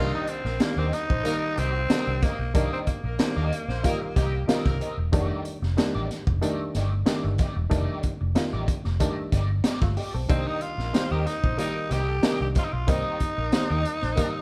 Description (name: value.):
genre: funk.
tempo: 93 BPM.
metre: 4/4.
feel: straight.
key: C dorian.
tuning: A4 = 440 Hz.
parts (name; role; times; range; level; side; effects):
growling tenor saxophone; melody; 0.0-4.8, 10.3-14.4 s; Bb3 to G4; -32 LUFS; equal; none.
electric guitar at the edge of break-up; accompaniment; 0.0-14.4 s; A3 to Eb5; -38 LUFS; equal; wah.
muted clav; stabs; 0.0-14.4 s; Eb3 to A4; -34 LUFS; equal; none.
vintage muted fingered electric bass; bass; 0.0-14.2 s; E1 to Eb2; -31 LUFS; equal; none.
crunchy breakbeat drum kit; drums; 0.3-14.3 s; hi-hat, kick drum, snare drum; -29 LUFS; equal; none.
warm horn section; second line; 0.4-4.9, 10.8-14.3 s; G3 to C5; -39 LUFS; equal; none.
room: moderate stone room reverb, RT60 1.2 s.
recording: band playing live in one room.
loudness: -26 LUFS.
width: mono.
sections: 0.0-14.4 A section.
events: none.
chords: 0.0 Cm7; 5.1 F13; 10.3 Cm7.